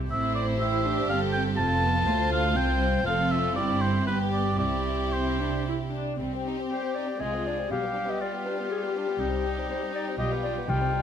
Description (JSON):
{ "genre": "quick classical-period movement for symphony orchestra", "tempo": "120 BPM", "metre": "3/4", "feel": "rubato", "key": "C major, C minor from 6.2 s", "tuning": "A4 = 440 Hz", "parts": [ { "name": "dark chamber double bass section", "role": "bass", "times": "0.0-11.0 s", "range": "F1 to D2", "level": "-32 LUFS", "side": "right 2 dB", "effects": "none" }, { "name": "warm studio cello section", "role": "bass", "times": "0.0-11.0 s", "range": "C2 to C3", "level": "-32 LUFS", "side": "right 2 dB", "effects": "none" }, { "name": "warm chamber violin section", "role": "melody", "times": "0.1-11.0 s", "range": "Eb4 to C5", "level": "-34 LUFS", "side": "left 5 dB", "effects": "none" }, { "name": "clear oboe", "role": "second line", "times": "0.1-11.0 s", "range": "Eb4 to A5", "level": "-30 LUFS", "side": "right 1 dB", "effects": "none" }, { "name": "warm chamber violin section", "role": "second line", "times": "0.1-11.0 s", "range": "G3 to G4", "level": "-34 LUFS", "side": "left 1 dB", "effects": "none" }, { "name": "warm chamber viola section", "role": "accompaniment", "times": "0.1-11.0 s", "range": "G3 to E4", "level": "-32 LUFS", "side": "equal", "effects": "none" }, { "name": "mellow clarinet", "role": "second line", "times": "6.7-11.0 s", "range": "G4 to G5", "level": "-32 LUFS", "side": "left 3 dB", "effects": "none" }, { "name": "timpani", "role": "percussion", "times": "10.7-11.0 s", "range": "C3", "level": "-34 LUFS", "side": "left 1 dB", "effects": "none" } ], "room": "light reverb", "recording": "close, detailed microphones", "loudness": "-24 LUFS", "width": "side -8 dB against mid", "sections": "0.0-6.2 A section; 6.2-11.0 B section", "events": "none", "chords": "0.1 Am; 1.6 F; 2.6 C5; 3.1 F; 3.6 C/G; 4.1 G; 4.6 C; 6.2 Cm; 7.2 Dm7b5/C; 7.7 G7/B; 9.2 Cm; 10.2 G7/B", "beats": "| 0.12 0.61 1.10 | 1.58 2.07 2.57 | 3.07 3.57 4.08 | 4.60 5.14 5.67 | 6.20 6.71 7.21 | 7.71 8.21 8.71 | 9.20 9.69 10.19 | 10.69" }